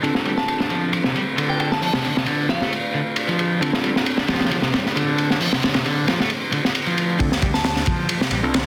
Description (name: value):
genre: breakbeat, breaks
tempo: 134 BPM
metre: 4/4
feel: straight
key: D minor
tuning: A4 = 439 Hz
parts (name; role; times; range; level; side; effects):
- deep dark ambient pad; sustained chords; 0.0-8.7 s; A3 to D5; -36 LUFS; equal; none
- overdriven semi-hollow guitar; riff; 0.0-8.7 s; C3 to D4; -27 LUFS; equal; low-pass filter, dub echo
- bell-like tine electric piano; stabs; 0.0-8.5 s; C4 to A4; -31 LUFS; equal; none
- crunchy breakbeat drum kit; drums; 0.0-8.7 s; hi-hat, kick drum, ride cymbal, snare drum; -23 LUFS; equal; low-pass filter on kick, low-pass filter on cymbals, low-pass filter on hats, soft clipping on snare, low-pass filter on snare, low-pass filter on room
- glassy synth bell; melody; 0.4-2.9, 7.5-7.7 s; F5 to A5; -31 LUFS; equal; chorus, AM radio sound, dub echo
- modern bright picked electric bass; bass; 7.2-8.7 s; A1 to D2; -28 LUFS; equal; low-pass filter
- riser; sound effects; 7.2-8.7 s; none; barely audible; none; none
room: wet small room reverb, RT60 0.5 s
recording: dense, heavily limited modern master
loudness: -21 LUFS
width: mono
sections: 0.0-7.2 A section; 7.2-8.7 B section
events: build-up 7.2-8.7; filter sweep on tine electric piano 7.2-8.7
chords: 0.0 Dm7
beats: | 0.03 0.48 0.93 1.38 | 1.82 2.27 2.72 3.17 | 3.62 4.06 4.51 4.96 | 5.41 5.86 6.30 6.75 | 7.20 7.65 8.09 8.54